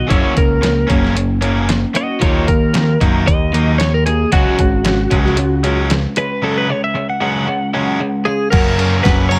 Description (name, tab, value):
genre	indie rock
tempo	114 BPM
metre	4/4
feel	straight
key	F# major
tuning	A4 = 440 Hz
part	twelve-string electric guitar	melody	0.0-9.4 s	E4 to F#5	-21 LUFS	equal	vibrato effect
part	overdriven electric guitar	riff	0.0-8.5 s	D#3 to F#4	-22 LUFS	equal	lush chorus
part	growling picked electric bass	bass	0.0-9.4 s	F#1 to F#2	-19 LUFS	equal	overdrive
part	crunchy overdriven guitar	riff	0.1-9.4 s	F#2 to D#4	-24 LUFS	equal	none
part	lo-fi sampler-style drum kit	drums	0.1-9.4 s	crash cymbal, hi-hat, kick drum, ride cymbal, snare drum	-19 LUFS	equal	none
part	glassy synth bell	second line	8.3-9.4 s	E#5 to A#5	-29 LUFS	equal	chorus
room	little or no reverb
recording	none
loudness	-15 LUFS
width	mono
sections	0.0-8.5 A section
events	clean electric guitar solo 0.0-8.5; break 6.4-8.5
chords	0.1 F#; 2.2 D#madd9; 4.3 C#sus4; 8.5 F#